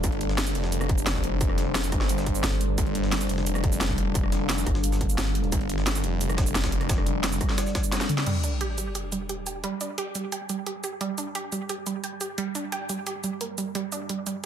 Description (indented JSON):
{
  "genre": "dark technical drum and bass",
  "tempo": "175 BPM",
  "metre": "4/4",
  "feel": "straight",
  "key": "unclear",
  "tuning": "A4 = 443 Hz",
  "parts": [
    { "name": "deep dark ambient pad", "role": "sustained chords", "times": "0.0-14.5 s", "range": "G3 to G5", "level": "-32 LUFS", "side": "left 1 dB", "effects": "chorus, built-in reverb, sidechain pumping" },
    { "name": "snarling distorted saw bass", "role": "bass", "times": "0.0-7.4 s", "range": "F1 to G1", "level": "-28 LUFS", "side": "equal", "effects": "distortion, overdrive, sidechain pumping" },
    { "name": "vowel-sweep wobble bass", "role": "bass", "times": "0.0, 2.4-5.5 s", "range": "G1", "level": "-26 LUFS", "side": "equal", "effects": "chorus" },
    { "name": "drum and bass drum kit", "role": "drums", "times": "0.0-14.3 s", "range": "cabasa, crash cymbal, hi-hat, rim click, snare drum, toms", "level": "-30 LUFS", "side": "equal", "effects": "overdrive" },
    { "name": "electronic kick drum", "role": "drums", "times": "0.0-7.8 s", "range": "none", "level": "-27 LUFS", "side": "equal", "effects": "distortion" },
    { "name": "jungle sampler-style drum kit", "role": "drums", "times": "0.0-8.2 s", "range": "hi-hat, snare drum", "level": "-37 LUFS", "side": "equal", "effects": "none" },
    { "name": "analog pluck", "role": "arpeggios", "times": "8.3-14.4 s", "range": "G3 to G4", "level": "-30 LUFS", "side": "right 4 dB", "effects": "chorus, sidechain pumping, tape echo" },
    { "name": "sub drop", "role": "sound effects", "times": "8.3-9.6 s", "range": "none", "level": "-30 LUFS", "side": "equal", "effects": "none" }
  ],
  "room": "light reverb",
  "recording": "dense, heavily limited modern master",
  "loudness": "-24 LUFS",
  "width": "side -9 dB against mid",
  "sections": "0.0-8.3 A section; 8.3-14.5 B section",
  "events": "drop 0.0-8.3; drum fill 7.9-8.3; band accent 8.2; impact 8.3-9.6; filter sweep on ambient pad 8.3-14.5",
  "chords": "0.0 G5",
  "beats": "| 0.04 0.38 0.72 1.07 | 1.41 1.75 2.09 2.44 | 2.78 3.12 3.47 3.81 | 4.15 4.49 4.84 5.18 | 5.52 5.87 6.21 6.55 | 6.89 7.24 7.58 7.92 | 8.27 8.61 8.95 9.29 | 9.64 9.98 10.32 10.67 | 11.01 11.35 11.69 12.04 | 12.38 12.72 13.07 13.41 | 13.75 14.09 14.44"
}